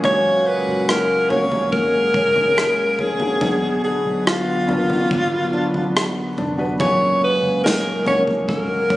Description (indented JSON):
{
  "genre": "pop ballad",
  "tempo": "71 BPM",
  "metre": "4/4",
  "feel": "straight",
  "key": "F# major",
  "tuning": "A4 = 441 Hz",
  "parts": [
    { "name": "felt-muted upright piano", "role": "accompaniment", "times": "0.0-9.0 s", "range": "A#2 to B4", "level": "-26 LUFS", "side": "left 1 dB", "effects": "none" },
    { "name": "airy breathy pad", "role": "sustained chords", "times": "0.0-9.0 s", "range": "A#2 to G#4", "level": "-27 LUFS", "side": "equal", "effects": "chorus" },
    { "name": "nylon-string guitar", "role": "arpeggios", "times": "0.0-9.0 s", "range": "F#2 to G#4", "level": "-27 LUFS", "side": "equal", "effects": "none" },
    { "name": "vintage muted fingered electric bass", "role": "bass", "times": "0.0-9.0 s", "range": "E#1 to C#2", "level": "-34 LUFS", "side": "equal", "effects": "none" },
    { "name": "unplugged drum kit", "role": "drums", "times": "0.0-9.0 s", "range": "kick drum, rim click, snare drum, toms", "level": "-24 LUFS", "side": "equal", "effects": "none" },
    { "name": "clear alto saxophone", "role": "melody", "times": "0.1-9.0 s", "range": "E#4 to C#5", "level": "-18 LUFS", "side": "equal", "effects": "none" }
  ],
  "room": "light reverb",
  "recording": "recorded on a phone in the room, studio reverb, compression, nothing above 10.6 kHz",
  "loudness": "-16 LUFS",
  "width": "side -16 dB against mid",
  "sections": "0.0-9.0 A section",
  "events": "none",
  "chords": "0.0 F#add9; 3.4 Bm; 6.8 F#add9"
}